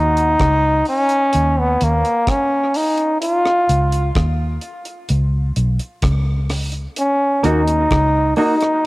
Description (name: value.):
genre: dub reggae.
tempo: 64 BPM.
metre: 4/4.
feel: straight.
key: unclear.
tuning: A4 = 439 Hz.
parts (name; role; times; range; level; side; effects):
bright trombone; melody; 0.0-8.9 s; Bb3 to F4; -16 LUFS; equal; cassette tape, dub echo.
vintage muted fingered electric bass; bass; 0.0-8.3 s; Cb2 to Eb2; -18 LUFS; equal; transformer saturation.
deep reggae drum kit; drums; 0.2-8.8 s; hi-hat, kick drum, rim click; -23 LUFS; equal; cassette tape.
semi-hollow electric guitar; accompaniment; 7.4-8.5 s; Bb3 to Gb4; -21 LUFS; right 2 dB; lush chorus, cassette tape, dub echo.
dark upright piano; stabs; 7.4-8.5 s; Eb4 to Eb5; -25 LUFS; left 2 dB; cassette tape, dub echo.
room: light reverb, studio ambience.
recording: home recording on cassette.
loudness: -15 LUFS.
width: side -21 dB against mid.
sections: 0.0-8.9 A section.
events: break 0.0-7.0.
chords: 0.0 Dbsus2; 3.2 Db; 7.0 Ebm.